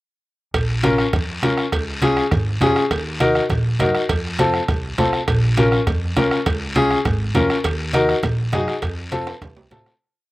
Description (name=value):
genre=latin, cumbia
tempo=203 BPM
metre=4/4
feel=straight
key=Bb minor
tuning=A4 = 440 Hz
part: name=upright bass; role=bass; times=0.5-9.8 s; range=Ab1 to A2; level=-23 LUFS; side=right 1 dB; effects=none
part: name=bombo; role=percussion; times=0.5-10.0 s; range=none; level=-26 LUFS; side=right 1 dB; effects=none
part: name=congas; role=percussion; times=0.5-9.9 s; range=none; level=-25 LUFS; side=right 2 dB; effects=none
part: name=cowbell and timbales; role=percussion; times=0.5-9.9 s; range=none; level=-28 LUFS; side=right 3 dB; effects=none
part: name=guiro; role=percussion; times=0.5-10.0 s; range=none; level=-30 LUFS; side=left 2 dB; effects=none
part: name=bright upright piano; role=accompaniment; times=0.8-9.9 s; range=C4 to Bb4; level=-18 LUFS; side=left 2 dB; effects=none
room=little or no reverb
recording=recorded outdoors, with no room sound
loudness=-17 LUFS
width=side -18 dB against mid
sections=0.5-10.0 groove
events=fade-out 8.1-10.0; drum fill 9.3-10.0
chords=0.5 Bbm; 1.7 Db; 2.9 Ebm; 4.1 F; 5.3 Bbm; 6.5 Db; 7.6 Ebm; 8.8 F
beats=| 0.54 0.83 1.13 1.43 | 1.72 2.02 2.31 2.61 | 2.91 3.20 3.50 3.80 | 4.09 4.39 4.68 4.98 | 5.28 5.57 5.87 6.17 | 6.46 6.76 7.05 7.35 | 7.64 7.94 8.23 8.53 | 8.83 9.12 9.42 9.71